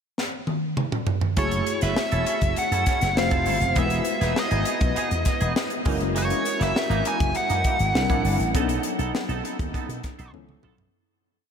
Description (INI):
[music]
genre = polished 1980s jazz-funk pop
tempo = 100 BPM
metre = 4/4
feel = straight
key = F# dorian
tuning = A4 = 439 Hz
[part]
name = crisp fusion drum kit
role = drums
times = 0.2-10.9 s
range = hi-hat, kick drum, snare drum, toms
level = -26 LUFS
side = equal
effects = none
[part]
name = nasal lead guitar with a parked wah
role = melody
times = 1.4-10.3 s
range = C#5 to G#5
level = -26 LUFS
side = equal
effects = overdrive, ping-pong delay
[part]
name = tine electric piano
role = accompaniment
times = 1.4-11.0 s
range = E#3 to C#5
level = -28 LUFS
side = left 2 dB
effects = medium stereo tremolo, analog chorus
[part]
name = twangy electric guitar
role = riff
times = 1.4-10.8 s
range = E3 to B4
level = -31 LUFS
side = right 5 dB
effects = analog chorus
[part]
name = slap bass with an envelope filter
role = bass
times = 1.4-10.9 s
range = E1 to B2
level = -26 LUFS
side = equal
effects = none
[sound]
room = moderate huge ambient reverb, RT60 8.7 s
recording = dreamy mix soaked in reverb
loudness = -21 LUFS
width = side -7 dB against mid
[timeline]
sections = 0.0-1.4 pickup bar; 1.4-10.9 verse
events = drum fill 0.2-1.4, 10.3-10.9; fade-out 8.5-10.9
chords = 0.0 N.C.; 1.4 F#m7; 3.2 Fmaj7; 3.8 Emaj7; 5.9 F#13; 7.9 C9; 8.5 B7; 10.3 C#7alt